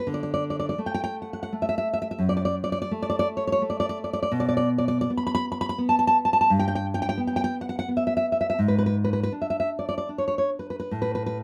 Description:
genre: romantic piece for solo classical guitar.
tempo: 67-90 BPM.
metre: 3/4.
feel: rubato.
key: unclear.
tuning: A4 = 441 Hz.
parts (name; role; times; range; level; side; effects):
nylon-string guitar; solo; 0.0-11.4 s; F#2 to B5; -25 LUFS; equal; none.
room: light reverb.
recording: none.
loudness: -25 LUFS.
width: mono.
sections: 0.0-11.4 A section.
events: none.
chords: 0.1 D5; 2.2 D/F#; 4.3 N.C.; 6.5 G6; 8.6 G#dim; 10.9 N.C..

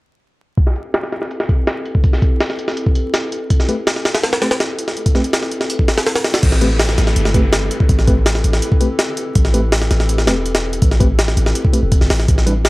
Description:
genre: drum and bass, jungle.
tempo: 164 BPM.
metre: 4/4.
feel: straight.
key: A minor.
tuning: A4 = 440 Hz.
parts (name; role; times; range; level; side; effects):
warbly tape-like pad; sustained chords; 0.9-12.7 s; B3 to B4; -25 LUFS; left 1 dB; chorus, built-in reverb.
jungle sampler-style drum kit; drums; 0.6-12.7 s; crash cymbal, hi-hat, kick drum, snare drum; -15 LUFS; equal; low-pass filter on hats, low-pass filter on kick, low-pass filter on snare, low-pass filter on cymbals, low-pass filter on room.
mellow tine electric piano; stabs; 3.7-12.5 s; G3 to B4; -23 LUFS; left 1 dB; medium stereo tremolo, dub echo.
warm 808-style bass; bass; 6.4-12.7 s; E1 to A1; -16 LUFS; equal; tube saturation.
downlifter; sound effects; 6.4-9.4 s; none; -28 LUFS; right 2 dB; none.
room: digital ambience.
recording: dry, gritty hardware recording, vinyl crackle.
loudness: -14 LUFS.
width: side -21 dB against mid.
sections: 0.6-6.4 A section; 6.4-12.7 B section.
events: filter sweep on drum 0.6-6.4; filter sweep on ambient pad 0.6-6.4; drop 6.4-12.7.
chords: 0.6 Am9.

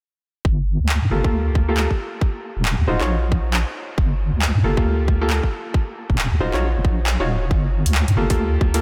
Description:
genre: UK garage, two-step garage.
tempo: 136 BPM.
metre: 4/4.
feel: swing 60% on 16ths.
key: G minor.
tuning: A4 = 438 Hz.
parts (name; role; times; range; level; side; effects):
deep soft wobble bass; bass; 0.4-8.8 s; Eb1 to G2; -22 LUFS; equal; chorus, sidechain pumping.
electronic kick drum; drums; 0.4-8.7 s; none; -21 LUFS; equal; none.
garage drum kit; drums; 0.9-8.8 s; handclaps, hi-hat; -30 LUFS; equal; none.
bright grand piano; stabs; 1.1-8.8 s; Bb3 to Db5; -27 LUFS; equal; low-pass filter, delay.
room: light reverb.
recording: none.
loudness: -20 LUFS.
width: mono.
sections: 0.5-8.8 A section.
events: filter sweep on wobble bass 0.5-8.8.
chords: 0.5 Gm9; 2.0 Ebmadd9; 4.0 Gm9; 5.5 Ebmadd9; 7.5 Gm9.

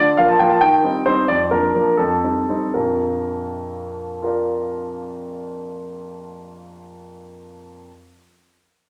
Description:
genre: classical-period piano sonatina.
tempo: 76-92 BPM (dotted quarters).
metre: 6/8.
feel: rubato.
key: Bb major.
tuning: A4 = 442 Hz.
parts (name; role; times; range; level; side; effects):
warm grand piano; solo; 0.0-7.9 s; Bb1 to A5; -20 LUFS; equal; none.
room: wet recital hall reverb, RT60 1.5 s.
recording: none.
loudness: -19 LUFS.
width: mono.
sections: 0.0-2.8 A section; 2.8-5.7 B section.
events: slowing down 0.0-2.8.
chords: 0.0 Bb/D; 0.6 Cm/Eb; 1.3 Bb/F; 2.0 F9; 2.8 Bb.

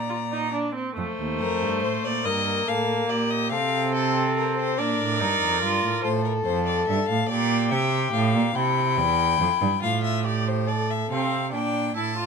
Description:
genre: classical, baroque-style fugue for string quartet.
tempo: 48 BPM (dotted quarters).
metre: 6/8.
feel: straight.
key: Bb major.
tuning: A4 = 440 Hz.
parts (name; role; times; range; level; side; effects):
warm violin; melody; 0.0-12.3 s; A4 to Bb5; -27 LUFS; left 5 dB; none.
dark violin; second line; 0.0-11.1 s; E4 to D5; -27 LUFS; left 6 dB; none.
rich cello; bass; 0.0-12.3 s; Eb2 to C3; -26 LUFS; right 5 dB; none.
rich viola; accompaniment; 0.1-6.0, 11.1-12.3 s; A3 to F4; -27 LUFS; right 2 dB; none.
room: light reverb.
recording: minimal, uncompressed stereo recording.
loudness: -21 LUFS.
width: side -5 dB against mid.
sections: 1.0-11.1 A section; 11.1-12.3 B section.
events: none.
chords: 0.0 Bb; 1.0 Bb5; 2.3 Gm9; 3.5 F/C; 4.8 Bb; 6.0 F; 7.3 Gm7/Bb; 8.6 C; 9.8 F/A; 11.1 F.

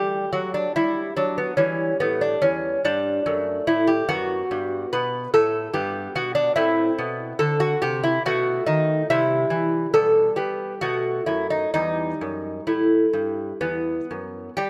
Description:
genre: classical, baroque-style dance for lute.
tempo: 61-74 BPM.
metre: 3/4.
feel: rubato.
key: E minor from 4.1 s.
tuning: A4 = 441 Hz.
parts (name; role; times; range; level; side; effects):
lute; solo; 0.0-14.7 s; E2 to B4; -23 LUFS; equal; none.
room: moderate concert hall reverb, RT60 2.3 s.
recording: none.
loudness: -23 LUFS.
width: mono.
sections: 0.0-14.6 A section.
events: none.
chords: 0.0 D; 1.6 Em6; 3.3 D/F#; 4.1 B5/F#; 5.8 Gmaj7; 6.6 Am11; 8.3 B7; 9.1 C; 10.0 Gadd9/B; 10.8 B5; 11.8 Em.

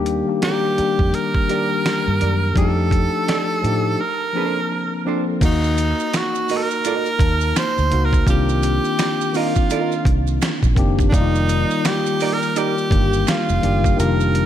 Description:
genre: R&B, neo-soul.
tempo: 84 BPM.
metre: 4/4.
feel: swing 61% on 16ths.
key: unclear.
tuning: A4 = 440 Hz.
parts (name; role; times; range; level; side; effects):
tine electric piano; accompaniment; 0.0-14.5 s; Eb3 to A5; -22 LUFS; left 4 dB; medium stereo tremolo.
vintage muted fingered electric bass; bass; 0.0-14.5 s; F1 to A2; -20 LUFS; right 1 dB; none.
boom bap sampler-style drum kit; drums; 0.1-14.5 s; crash cymbal, hi-hat, kick drum, snare drum; -21 LUFS; right 1 dB; none.
edgy tenor saxophone; melody; 0.4-14.5 s; D4 to C5; -22 LUFS; right 2 dB; slapback echo.
hollow-body jazz guitar; second line; 0.4-12.7 s; D4 to Eb5; -27 LUFS; right 10 dB; none.
maracas and finger snaps; percussion; 5.4-14.3 s; none; -34 LUFS; right 14 dB; none.
room: light reverb.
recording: none.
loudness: -16 LUFS.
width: side -10 dB against mid.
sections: 0.0-5.4 A section; 5.4-14.5 B section.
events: break 4.0-5.4; kick muted 14.0-14.5.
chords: 0.0 Ebmaj7; 2.6 F13; 4.0 Bbmaj9; 5.4 Ebm; 8.3 Cm11; 11.1 F13sus4.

